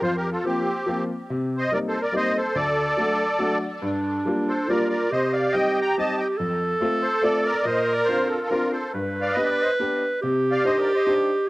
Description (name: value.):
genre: musette waltz.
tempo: 141 BPM.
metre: 3/4.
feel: straight.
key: unclear.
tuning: A4 = 440 Hz.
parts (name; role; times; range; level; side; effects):
musette accordion; melody; 0.0-11.1 s; C4 to Bb5; -25 LUFS; equal; cassette tape, tape echo.
clear upright piano; accompaniment; 0.0-11.3 s; D2 to C5; -27 LUFS; left 1 dB; none.
warm clarinet; second line; 3.8-11.5 s; D4 to B4; -23 LUFS; right 1 dB; none.
room: light reverb.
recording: home recording on cassette.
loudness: -21 LUFS.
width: side -20 dB against mid.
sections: 0.0-11.5 A section.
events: none.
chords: 0.0 Fsus4; 1.3 Cm7; 2.6 D; 3.8 Gm7; 5.1 Cm; 6.4 F; 7.7 Bbadd9; 8.9 G; 10.2 Cmadd9.